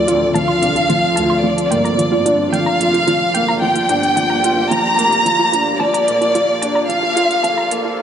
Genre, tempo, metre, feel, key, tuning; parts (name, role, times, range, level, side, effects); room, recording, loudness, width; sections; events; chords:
piano and strings electronica; 110 BPM; 4/4; straight; G minor; A4 = 438 Hz
rich chamber violin section; melody; 0.0-7.9 s; D5 to Bb5; -16 LUFS; left 1 dB
granular cloud pad; sustained chords; 0.0-8.0 s; Bb3 to D5; -24 LUFS; left 1 dB; built-in reverb
warbly dusty pluck; arpeggios; 0.0-7.9 s; F4 to C6; -24 LUFS; right 2 dB; chorus, digital delay
felt-muted upright piano; riff; 0.0-8.0 s; F3 to F4; -19 LUFS; right 2 dB
rich chamber double bass section; bass; 0.0-7.9 s; F1 to D2; -28 LUFS; left 1 dB
electronic hi-hat; drums; 0.1-7.8 s; -25 LUFS; right 3 dB; overdrive
moderate lush hall reverb, RT60 2.8 s; high-pass filter, nothing above 10.9 kHz; -13 LUFS; side -8 dB against mid
0.0-8.0 A section
build-up 0.0-8.0; filter sweep on ambient pad 0.0-8.0
0.0 Dm7; 1.4 Gm7; 5.8 Bbmaj7